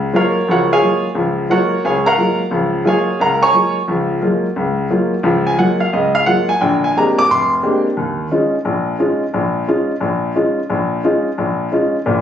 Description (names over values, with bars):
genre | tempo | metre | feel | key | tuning
jazz | 176 BPM | 4/4 | swing 65% on 8ths | F# major | A4 = 438 Hz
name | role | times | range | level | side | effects
warm grand piano | solo | 0.0-12.2 s | E#1 to D6 | -14 LUFS | equal | none
room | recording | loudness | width
moderate studio reverb, RT60 0.6 s | recorded on a phone in the room, studio reverb, compression, nothing above 8.0 kHz | -14 LUFS | side -9 dB against mid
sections
0.0-8.0 A section; 8.0-12.2 B section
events
none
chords
0.0 F#maj9; 6.6 A#13; 8.0 Eb9sus4